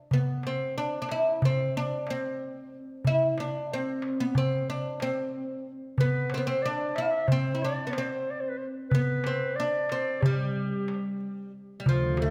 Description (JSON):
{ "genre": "Turkish makam ensemble", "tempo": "184 BPM (eighths)", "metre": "9/8", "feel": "straight", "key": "unclear", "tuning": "A4 = 444 Hz", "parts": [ { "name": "oud", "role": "melody", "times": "0.1-12.3 s", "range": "F3 to E4-40c", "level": "-32 LUFS", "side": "equal", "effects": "none" }, { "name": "darbuka", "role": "percussion", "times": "0.1-12.3 s", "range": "none", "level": "-30 LUFS", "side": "equal", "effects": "none" }, { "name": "mellow clarinet", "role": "second line", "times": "6.0-12.3 s", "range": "F4 to F5", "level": "-35 LUFS", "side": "equal", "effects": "none" }, { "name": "dark double bass", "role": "drone", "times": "11.9-12.3 s", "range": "D2", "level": "-33 LUFS", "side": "equal", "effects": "none" } ], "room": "moderate recital hall reverb, RT60 1.5 s", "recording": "none", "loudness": "-29 LUFS", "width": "mono", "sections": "0.1-11.9 A section", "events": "none", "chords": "none" }